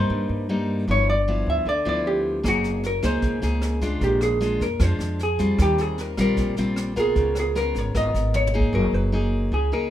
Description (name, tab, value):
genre	bossa nova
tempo	153 BPM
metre	4/4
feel	straight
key	unclear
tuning	A4 = 443 Hz
part	vintage hollow-body jazz guitar	melody	0.0-9.9 s	Gb4 to E5	-25 LUFS	equal	none
part	nylon-string guitar	accompaniment	0.0-9.9 s	G2 to Bb4	-25 LUFS	left 1 dB	none
part	upright bass	bass	0.0-9.7 s	Gb1 to G2	-25 LUFS	equal	none
part	jazz brush drum kit	drums	2.4-8.7 s	kick drum, rim click, snare drum, toms	-29 LUFS	right 1 dB	none
room	light reverb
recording	minimal, uncompressed stereo recording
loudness	-20 LUFS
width	side -12 dB against mid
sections	0.0-8.7 A section; 8.7-9.9 B section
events	drum fill 8.3-8.7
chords	0.0 Cm7; 0.9 G6; 2.4 Gb69; 4.0 Bb7; 5.6 Eb69; 7.2 Db13; 8.7 F#69